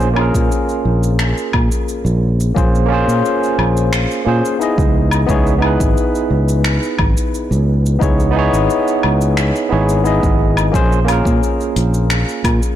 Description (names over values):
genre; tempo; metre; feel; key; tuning
sunset chillout; 88 BPM; 4/4; straight; Bb minor; A4 = 441 Hz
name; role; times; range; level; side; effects
barky tine electric piano; accompaniment; 0.0-12.8 s; Bb3 to Eb5; -17 LUFS; equal; overdrive, auto-pan, tape echo
fingered electric bass; bass; 0.0-12.6 s; Ab1 to Bb2; -15 LUFS; equal; tube saturation
smooth R&B drum kit; drums; 0.0-12.8 s; cabasa, finger snaps, hi-hat, woodblock; -23 LUFS; left 2 dB; soft clipping on snare
electronic kick drum; drums; 0.3-12.6 s; none; -18 LUFS; equal; overdrive
room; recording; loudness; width
light reverb; blown-out, overdriven recording, overdrive; -13 LUFS; side -11 dB against mid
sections
0.0-12.8 A section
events
none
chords
0.0 Bbm9; 4.9 Dbm9; 10.7 Bbm7